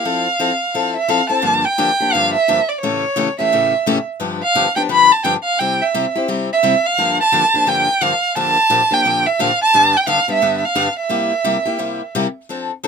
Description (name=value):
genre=jazz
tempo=174 BPM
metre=4/4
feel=swing 62% on 8ths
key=unclear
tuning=A4 = 442 Hz
part: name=warm violin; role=melody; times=0.0-12.1 s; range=C#5 to B5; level=-15 LUFS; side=right 2 dB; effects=none
part: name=picked steel-string acoustic guitar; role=accompaniment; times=0.0-12.9 s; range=G2 to A4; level=-20 LUFS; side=left 5 dB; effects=none
room=light reverb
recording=minimal, uncompressed stereo recording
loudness=-14 LUFS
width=side -6 dB against mid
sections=0.0-1.4 A section; 1.4-12.5 B section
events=none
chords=0.1 Fmaj7; 1.4 Gm7; 2.8 A7; 4.2 G7; 5.6 C; 7.0 Gm7; 8.3 Bb6; 9.7 G; 11.1 C7